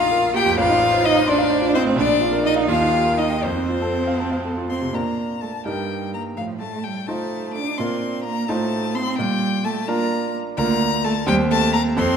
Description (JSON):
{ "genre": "quick classical-period movement for piano trio", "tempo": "85 BPM (dotted quarters)", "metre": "6/8", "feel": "rubato", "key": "Bb major", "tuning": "A4 = 441 Hz", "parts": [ { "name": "clear violin", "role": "melody", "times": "0.0-12.2 s", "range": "C5 to D6", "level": "-23 LUFS", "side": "left 7 dB", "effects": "none" }, { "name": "rich cello", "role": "second line", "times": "0.0-12.2 s", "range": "F3 to G4", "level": "-23 LUFS", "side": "right 4 dB", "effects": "none" }, { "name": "bright concert grand piano", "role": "accompaniment", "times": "0.0-12.2 s", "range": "A1 to C6", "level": "-22 LUFS", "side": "right 1 dB", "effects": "none" } ], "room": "wet scoring stage reverb, RT60 1.7 s", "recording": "minimal, uncompressed stereo recording", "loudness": "-18 LUFS", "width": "side -7 dB against mid", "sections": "0.0-4.9 A section; 4.9-12.2 B section", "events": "none", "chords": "0.0 Bb5; 0.6 F7/A; 2.0 Bb; 2.7 Eb; 3.4 F; 4.9 Bb; 5.7 Eb/G; 6.4 F7/A; 7.8 Bb; 8.5 F7/A; 9.2 Bb; 10.6 Bb/D; 11.3 Cm/Eb", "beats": "| 0.59 1.28 | 1.98 2.69 | 3.43 4.20 | 4.95 5.66 | 6.38 7.09 | 7.79 8.49 | 9.19 9.88 | 10.57 11.27 | 11.97" }